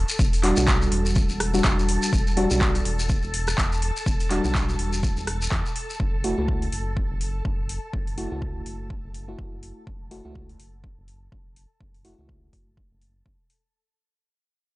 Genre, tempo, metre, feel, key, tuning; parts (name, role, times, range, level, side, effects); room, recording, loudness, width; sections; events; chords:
deep house; 124 BPM; 4/4; swing 58% on 16ths; A4 = 440 Hz
round analog bass; bass; 0.0-13.4 s; E1 to E2; -28 LUFS; equal; sidechain pumping
soft string machine; texture; 0.0-13.8 s; A4 to A5; -36 LUFS; equal; phaser, ensemble chorus, sidechain pumping
shekere; percussion; 0.1-6.0 s; -32 LUFS; left 2 dB
electronic kick drum; drums; 0.2-13.4 s; -26 LUFS; equal; overdrive
deep house drum kit; drums; 0.3-13.6 s; handclaps, hi-hat, rim click; -29 LUFS; equal; overdrive
mellow FM electric piano; stabs; 0.4-13.1 s; G3 to F#4; -26 LUFS; equal; chorus, tremolo, sidechain pumping, analog delay
little or no reverb; dry, gritty hardware recording, nothing above 10.3 kHz; -21 LUFS; side -20 dB against mid
0.0-13.7 A section
fade-out 0.0-13.7
0.0 Em9; 6.0 F#m7